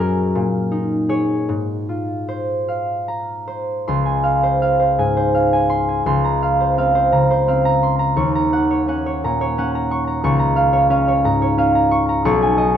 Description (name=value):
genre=classical, solo harp piece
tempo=49-61 BPM (dotted quarters)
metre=6/8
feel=rubato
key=Ab major, Db major from 3.9 s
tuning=A4 = 440 Hz
part: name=concert harp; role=solo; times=0.0-12.8 s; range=Cb2 to Db6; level=-16 LUFS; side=equal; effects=none
room=light reverb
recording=dark, warm production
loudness=-16 LUFS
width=side -9 dB against mid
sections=0.0-3.9 A section; 3.9-12.8 B section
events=none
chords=0.3 Bbm7; 1.5 Ab69; 3.9 Dbmaj7; 6.1 Bbmadd9/Db; 8.2 Ebm7; 10.2 Db6; 12.3 Cb69